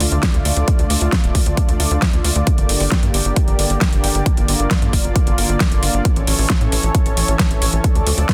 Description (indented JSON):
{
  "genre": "uplifting trance",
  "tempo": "134 BPM",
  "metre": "4/4",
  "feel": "straight",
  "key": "D harmonic minor",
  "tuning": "A4 = 440 Hz",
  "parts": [
    { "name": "lush unison pad", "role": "sustained chords", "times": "0.0-8.3 s", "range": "D3 to D5", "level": "-24 LUFS", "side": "equal", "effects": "chorus, sidechain pumping" },
    { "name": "tight sequencer bass", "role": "bass", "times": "0.0-8.2 s", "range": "D1 to A2", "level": "-22 LUFS", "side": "equal", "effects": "sidechain pumping" },
    { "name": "big-room dance drum kit", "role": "drums", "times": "0.0-8.3 s", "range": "hi-hat, snare drum", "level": "-23 LUFS", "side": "equal", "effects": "overdrive" },
    { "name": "electronic kick drum", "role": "drums", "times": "0.2-8.3 s", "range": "none", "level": "-19 LUFS", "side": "equal", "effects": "overdrive" }
  ],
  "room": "little or no reverb",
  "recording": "dense, heavily limited modern master",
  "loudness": "-17 LUFS",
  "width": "mono",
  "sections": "0.0-8.3 A section",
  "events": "none",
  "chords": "0.0 Dm; 2.5 Gm; 6.1 A",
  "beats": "0.23 | 0.68 1.13 1.57 2.02 | 2.47 2.92 3.37 3.81 | 4.26 4.71 5.16 5.60 | 6.05 6.50 6.95 7.39 | 7.84 8.29"
}